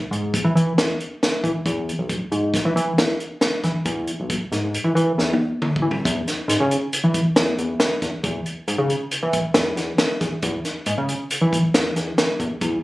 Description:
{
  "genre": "progressive instrumental, band music in an uneven meter",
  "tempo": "137 BPM",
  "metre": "5/4",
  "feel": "straight",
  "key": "E major",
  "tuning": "A4 = 440 Hz",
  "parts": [
    { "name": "chorused synth bass", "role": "bass", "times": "0.1-12.8 s", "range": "B1 to E3", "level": "-21 LUFS", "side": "equal", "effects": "none" },
    { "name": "compact cocktail drum kit", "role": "drums", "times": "0.1-12.7 s", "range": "hi-hat, kick drum, snare drum, toms", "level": "-22 LUFS", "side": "equal", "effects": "none" }
  ],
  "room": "moderate studio reverb, RT60 0.8 s",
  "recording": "recorded on a phone in the room, club reverb",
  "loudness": "-19 LUFS",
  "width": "side -18 dB against mid",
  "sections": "0.0-6.1 A section; 6.1-12.8 B section",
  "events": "drum fill 5.2-6.1",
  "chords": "none",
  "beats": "0.34 0.78 1.22 | 1.66 2.10 2.54 2.98 3.42 | 3.86 4.30 4.74 5.18 5.62 | 6.05 6.49 6.93 7.37 7.81 | 8.24 8.68 9.12 9.55 9.99 | 10.43 10.87 11.30 11.74 12.18 | 12.61"
}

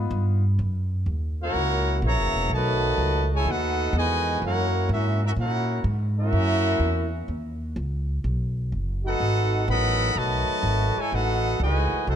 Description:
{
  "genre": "jazz, big band swing",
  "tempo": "125 BPM",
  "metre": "4/4",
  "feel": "swing 68% on 8ths",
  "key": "unclear",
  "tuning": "A4 = 440 Hz",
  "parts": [
    { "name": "upright bass", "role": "bass", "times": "0.0-12.2 s", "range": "E1 to A#2", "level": "-24 LUFS", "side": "equal", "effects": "none" },
    { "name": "clear trumpet section", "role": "melody", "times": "1.4-12.2 s", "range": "C#4 to B5", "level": "-26 LUFS", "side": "left 1 dB", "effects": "none" },
    { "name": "muted trombone section", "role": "second line", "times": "1.4-12.2 s", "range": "A2 to F#4", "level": "-28 LUFS", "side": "right 2 dB", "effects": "none" }
  ],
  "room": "light reverb",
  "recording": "close, detailed microphones",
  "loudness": "-22 LUFS",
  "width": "side -9 dB against mid",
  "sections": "0.6-12.2 A section",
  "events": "none",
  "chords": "0.0 G7b9b13; 0.6 F#7; 2.5 B7; 4.4 F#7; 8.2 B7",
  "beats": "0.12 | 0.59 1.07 1.55 2.03 | 2.51 2.98 3.46 3.94 | 4.42 4.90 5.38 5.86 | 6.33 6.81 7.29 7.77 | 8.25 8.73 9.21 9.69 | 10.16 10.64 11.12 11.60 | 12.08"
}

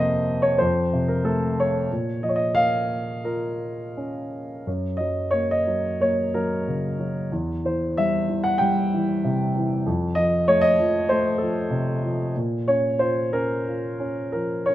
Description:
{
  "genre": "classical, lyrical solo piano",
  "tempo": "80-98 BPM",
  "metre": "4/4",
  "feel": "rubato",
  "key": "Bb minor",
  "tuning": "A4 = 440 Hz",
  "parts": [
    { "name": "dark grand piano", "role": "solo", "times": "0.0-14.7 s", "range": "E2 to G5", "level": "-21 LUFS", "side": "equal", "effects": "none" }
  ],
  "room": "light reverb",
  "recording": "close, detailed microphones",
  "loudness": "-21 LUFS",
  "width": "side -14 dB against mid",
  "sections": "0.0-4.7 A section; 4.7-14.7 B section",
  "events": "none",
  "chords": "0.0 Fsus4; 0.6 F; 1.9 Bbm; 4.7 Gb; 7.3 C/E; 9.9 F; 12.3 Bbm",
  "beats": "0.60 1.25 | 1.90 2.56 3.24 3.96 | 4.67 5.33 5.99 6.65 | 7.30 7.95 8.60 9.23 | 9.86 10.48 11.10 11.71 | 12.34 12.98 13.64 14.32"
}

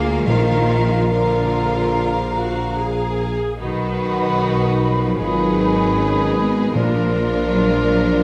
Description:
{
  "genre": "classical, slow romantic movement for symphony orchestra",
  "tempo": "71-80 BPM",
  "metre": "4/4",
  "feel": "rubato",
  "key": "unclear",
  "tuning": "A4 = 440 Hz",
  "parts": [
    { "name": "rich symphonic violin section", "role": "melody", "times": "0.0-8.2 s", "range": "Bb4 to F5", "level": "-32 LUFS", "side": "equal", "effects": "none" },
    { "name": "warm symphonic violin section", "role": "second line", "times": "0.0-8.2 s", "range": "F4 to Bb4", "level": "-32 LUFS", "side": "equal", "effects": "none" },
    { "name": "rich symphonic viola section", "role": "accompaniment", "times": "0.0-8.2 s", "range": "D4 to Ab4", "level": "-31 LUFS", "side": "equal", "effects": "none" },
    { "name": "mellow French horn section", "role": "sustained chords", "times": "0.0-8.2 s", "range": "Bb3 to Bb4", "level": "-27 LUFS", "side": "equal", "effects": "none" },
    { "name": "clear studio double bass section", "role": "bass", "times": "0.0-8.2 s", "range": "Ab1 to D2", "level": "-27 LUFS", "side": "equal", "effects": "none" },
    { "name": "clear symphonic cello section", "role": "bass", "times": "0.0-8.2 s", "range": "D3 to Bb3", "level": "-27 LUFS", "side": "equal", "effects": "none" },
    { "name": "mellow tuba", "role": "bass", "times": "0.0-8.2 s", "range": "Ab1 to D2", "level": "-27 LUFS", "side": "equal", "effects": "none" },
    { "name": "mellow clarinet", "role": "second line", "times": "0.3-8.2 s", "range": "F4 to Bb4", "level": "-28 LUFS", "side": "equal", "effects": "none" },
    { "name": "mellow hollow flute section", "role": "second line", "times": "0.3-8.2 s", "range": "D5 to Cb6", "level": "-28 LUFS", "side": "equal", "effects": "none" },
    { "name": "warm bassoon", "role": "accompaniment", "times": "0.3-8.2 s", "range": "D#3 to F3", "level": "-30 LUFS", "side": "equal", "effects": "none" },
    { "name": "timpani", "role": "percussion", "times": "0.3-1.5, 6.8-7.8 s", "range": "Bb2", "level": "-27 LUFS", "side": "equal", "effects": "none" }
  ],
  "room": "wet scoring stage reverb, RT60 1.7 s",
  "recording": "none",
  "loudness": "-19 LUFS",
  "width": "mono",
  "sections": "0.0-8.2 A section",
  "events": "none",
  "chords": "0.3 Bb; 3.6 B; 5.2 Abm7; 6.8 Bb",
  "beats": "| 0.28 1.12 1.95 2.78 | 3.61 4.41 5.20 5.98 | 6.75 7.51"
}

